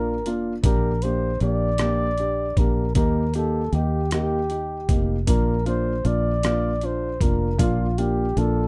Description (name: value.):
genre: six-eight pop ballad.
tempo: 52 BPM (dotted quarters).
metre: 6/8.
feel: straight.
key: Bb major.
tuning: A4 = 441 Hz.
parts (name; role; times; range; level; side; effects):
breathy flugelhorn; melody; 0.0-8.7 s; F4 to D5; -29 LUFS; equal; none.
felt-muted upright piano; accompaniment; 0.0-8.6 s; Bb3 to G4; -29 LUFS; equal; none.
fingered electric bass; bass; 0.0-8.7 s; F1 to Eb2; -27 LUFS; equal; none.
trip hop sampler-style drum kit; drums; 0.3-8.5 s; hi-hat, kick drum, rim click; -26 LUFS; equal; none.
room: little or no reverb.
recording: dry, close 1970s-style studio recording.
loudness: -23 LUFS.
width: mono.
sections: 0.0-8.7 A section.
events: none.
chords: 0.0 Bb; 0.6 Gm/Bb; 3.0 Eb; 5.3 Bb.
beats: | 0.64 1.80 | 2.96 4.11 | 5.27 6.43 | 7.59.